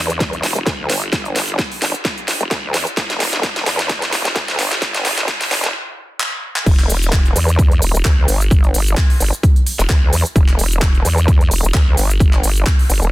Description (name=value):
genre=bass house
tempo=130 BPM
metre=4/4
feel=swing 55% on 16ths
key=E minor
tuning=A4 = 440 Hz
part: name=vowel-sweep wobble bass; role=bass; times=0.0-13.1 s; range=E1 to E2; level=-18 LUFS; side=equal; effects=chorus, overdrive, sidechain pumping
part: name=garage drum kit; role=drums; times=0.1-13.1 s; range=cabasa, crash cymbal, handclaps, hi-hat, snare drum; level=-19 LUFS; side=equal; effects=high-pass filter on snare, high-pass filter on hats, high-pass filter on cymbals, high-pass filter on perc, high-pass filter on room
part: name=electronic kick drum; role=drums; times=0.2-12.8 s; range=none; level=-14 LUFS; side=equal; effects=overdrive
room=light reverb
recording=dense, heavily limited modern master, high-pass filter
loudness=-14 LUFS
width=side -18 dB against mid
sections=0.0-6.7 A section; 6.7-13.1 B section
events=build-up 0.0-6.7; drum fill 0.0-5.7, 6.2-6.7; stop 5.7-6.7; drop 6.7-13.1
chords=none